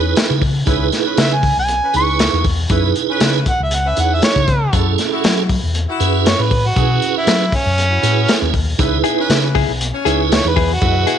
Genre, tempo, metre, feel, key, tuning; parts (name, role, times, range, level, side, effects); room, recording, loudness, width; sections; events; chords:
straight-eighth soul blues; 118 BPM; 4/4; swing 54% on 16ths; C# minor; A4 = 440 Hz
tonewheel organ; accompaniment; 0.0-11.2 s; C#4 to D#5; -20 LUFS; right 14 dB; slow rotary speaker, chorus vibrato
clear horn section; sustained chords; 0.0-11.0 s; C#4 to C#5; -26 LUFS; left 3 dB
fingered electric bass; bass; 0.0-11.0 s; B1 to F#3; -18 LUFS; left 2 dB
crunchy breakbeat drum kit; drums; 0.2-11.2 s; hi-hat, kick drum, snare drum; -18 LUFS; left 2 dB
warm harmonica; melody; 1.2-11.2 s; C#4 to C#6; -18 LUFS; right 1 dB; overdrive, slapback echo
direct-recorded clean electric guitar; stabs; 9.0-11.2 s; B3 to G#4; -21 LUFS; left 14 dB
light reverb, small room ambience; 1960s-style stereo with parts hard left and right, nothing above 10.3 kHz; -13 LUFS; side -9 dB against mid
0.0-11.2 A section
0.0 C#m7; 4.7 F#m7; 8.8 C#m7